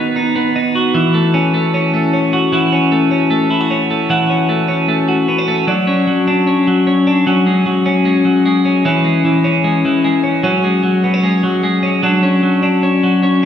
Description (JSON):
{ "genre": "indie pop", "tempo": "151 BPM", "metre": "4/4", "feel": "straight", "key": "F# minor", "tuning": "A4 = 440 Hz", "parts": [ { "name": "twelve-string electric guitar", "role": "solo", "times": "0.0-13.5 s", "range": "D#3 to F#4", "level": "-12 LUFS", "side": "left 1 dB", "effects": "none" } ], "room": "wet recital hall reverb, RT60 1.9 s", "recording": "recorded in a church or concert hall", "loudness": "-12 LUFS", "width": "side -9 dB against mid", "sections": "0.0-2.5 A section; 2.5-5.7 B section; 5.7-13.5 C section", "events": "none", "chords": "0.0 B/D#; 0.9 F#m7; 5.7 Dmaj7/F#; 7.3 F#sus2; 8.9 C#m; 10.4 F#sus2; 12.0 Dmaj7/F#", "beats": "0.15 0.55 | 0.94 1.33 1.73 2.12 | 2.52 2.91 3.30 3.70 | 4.09 4.49 4.89 5.28 | 5.68 6.08 6.47 6.87 | 7.26 7.66 8.06 8.46 | 8.85 9.25 9.65 10.04 | 10.44 10.84 11.24 11.64 | 12.03 12.43 12.83 13.23" }